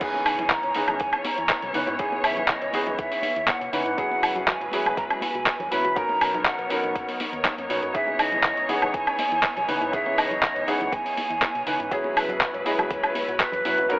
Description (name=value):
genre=nu-disco, nu disco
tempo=121 BPM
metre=4/4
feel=straight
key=C# dorian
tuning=A4 = 440 Hz
part: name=breathy mellow jazz flute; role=melody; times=0.0-14.0 s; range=B4 to B5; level=-26 LUFS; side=right 1 dB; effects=tape echo
part: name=warm concert grand piano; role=accompaniment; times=0.0-14.0 s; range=E3 to C#5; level=-28 LUFS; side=equal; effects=sidechain pumping
part: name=dark chamber string section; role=sustained chords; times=0.0-14.0 s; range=E3 to C#5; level=-32 LUFS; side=left 1 dB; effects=sidechain pumping
part: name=soft round pluck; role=arpeggios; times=0.0-13.9 s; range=A#3 to C#5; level=-37 LUFS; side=equal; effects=chorus, sidechain pumping, tape echo
part: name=hollow-body short-scale fingered electric bass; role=bass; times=0.0-13.9 s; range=F#1 to C#3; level=-47 LUFS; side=equal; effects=sidechain pumping
part: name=dusty soul sampler-style drum kit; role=drums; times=0.0-14.0 s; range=crash cymbal, handclaps, hi-hat, woodblock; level=-25 LUFS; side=equal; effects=small room reverb
part: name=electronic kick drum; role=drums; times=0.0-13.5 s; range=none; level=-32 LUFS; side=equal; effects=overdrive, small room reverb
part: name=congas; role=percussion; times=0.1-13.9 s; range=none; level=-40 LUFS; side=left 1 dB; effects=none
room=light reverb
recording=telephone sound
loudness=-21 LUFS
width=side -21 dB against mid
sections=0.0-14.0 A section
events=none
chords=0.0 C#m9; 4.0 F#9sus4; 6.0 Bmaj9; 7.9 C#m9; 11.9 F#9sus4